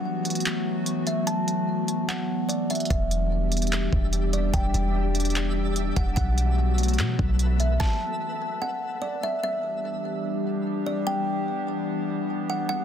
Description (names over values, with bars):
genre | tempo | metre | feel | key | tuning
hip hop, atmospheric cloud-rap | 147 BPM | 4/4 | half-time | E minor | A4 = 440 Hz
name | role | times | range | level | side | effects
warbly tape-like pad | sustained chords | 0.0-12.8 s | E3 to G4 | -28 LUFS | left 1 dB | chorus, built-in reverb, sidechain pumping
smooth R&B drum kit | drums | 0.3-7.9 s | handclaps, hi-hat, kick drum, snare drum | -28 LUFS | equal | none
kalimba | melody | 1.1-12.8 s | D5 to A5 | -30 LUFS | right 1 dB | ping-pong delay
warm 808-style bass | bass | 2.9-7.8 s | E1 to B2 | -24 LUFS | equal | none
twinkling granular texture | texture | 3.5-9.4 s | B3 to E5 | -39 LUFS | equal | built-in reverb
room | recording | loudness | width
digital ambience | dense, heavily limited modern master | -23 LUFS | side -9 dB against mid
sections
0.0-9.4 A section; 9.4-12.8 B section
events
break 0.0-2.9; stop 7.8-9.4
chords
0.0 B7sus4; 2.9 Em7; 6.2 B7sus4; 9.4 Em7